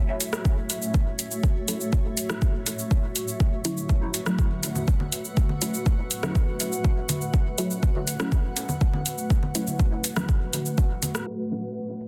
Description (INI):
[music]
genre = dub techno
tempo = 122 BPM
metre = 4/4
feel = straight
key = F# minor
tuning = A4 = 440 Hz
[part]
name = granular cloud pad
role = sustained chords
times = 0.0-12.1 s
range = A3 to F#5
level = -35 LUFS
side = equal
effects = built-in reverb, sidechain pumping
[part]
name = deep house drum kit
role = drums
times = 0.2-12.1 s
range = hi-hat, rim click, shaker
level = -32 LUFS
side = equal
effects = overdrive, dub echo
[part]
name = electronic kick drum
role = drums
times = 0.5-10.9 s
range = none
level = -25 LUFS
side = equal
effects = overdrive
[part]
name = filtered dub chord stab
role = stabs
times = 1.7-11.6 s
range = F#3 to E4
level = -34 LUFS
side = equal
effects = phaser, sidechain pumping, dub echo
[part]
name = congas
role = percussion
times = 3.6-11.1 s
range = none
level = -35 LUFS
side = equal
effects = overdrive, sidechain pumping on perc, dub echo
[sound]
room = light reverb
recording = dense, heavily limited modern master, low-pass filter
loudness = -25 LUFS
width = mono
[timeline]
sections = 0.0-11.3 A section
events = filter sweep on synth stab 0.0-11.3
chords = 0.0 F#m7